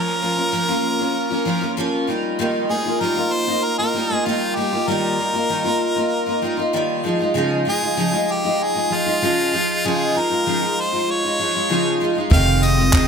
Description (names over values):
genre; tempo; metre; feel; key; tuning
acoustic pop; 97 BPM; 4/4; straight; unclear; A4 = 440 Hz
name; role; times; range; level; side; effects
bright harmonica; melody; 0.0-13.1 s; F4 to F5; -22 LUFS; equal; none
picked steel-string acoustic guitar; accompaniment; 0.0-13.1 s; F2 to F4; -20 LUFS; equal; double-tracked left and right
upright bass; bass; 12.3-13.0 s; F1; -17 LUFS; equal; none
compact cocktail drum kit; drums; 12.3-13.1 s; handclaps, kick drum, tambourine; -16 LUFS; equal; none
room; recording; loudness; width
moderate lush hall reverb, RT60 2.9 s; bright 1980s-style digital production; -17 LUFS; side -6 dB against mid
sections
0.0-12.3 A section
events
none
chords
0.0 Bbm/F; 2.1 Ebadd9; 7.0 Dbadd9; 12.3 Fm7